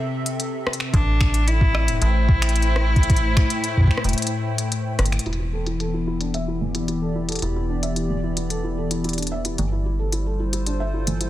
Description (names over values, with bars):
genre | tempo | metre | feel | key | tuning
IDM | 111 BPM | 4/4 | straight | E phrygian | A4 = 440 Hz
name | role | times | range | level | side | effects
clear cello | melody | 0.0-4.7 s | C4 to E4 | -27 LUFS | left 1 dB | vintage 12-bit sampler grit, tape echo
hollow soft pad | sustained chords | 0.0-11.3 s | A2 to G5 | -27 LUFS | left 2 dB | chorus, vintage 12-bit sampler grit, sidechain pumping
organic electronic drum kit | drums | 0.3-11.3 s | finger snaps, hi-hat, rim click | -28 LUFS | left 1 dB | low-pass filter on hats, studio reverb, soft clipping on snare, low-pass filter on snare
metallic FM bass | bass | 0.9-11.3 s | E1 to A1 | -23 LUFS | equal | tube saturation
electronic kick drum | drums | 0.9-3.9 s | none | -17 LUFS | equal | studio reverb
felt-muted upright piano | arpeggios | 5.3-11.3 s | E3 to E5 | -29 LUFS | right 2 dB | low-pass filter, tape echo
room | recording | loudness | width
little or no reverb | dense, heavily limited modern master | -19 LUFS | side -14 dB against mid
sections
0.0-5.3 A section; 5.3-11.3 B section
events
drum fill 5.0; filter sweep on felt piano 5.3-11.3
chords
0.0 C6; 0.9 Am7; 5.3 Em7; 9.6 G9sus4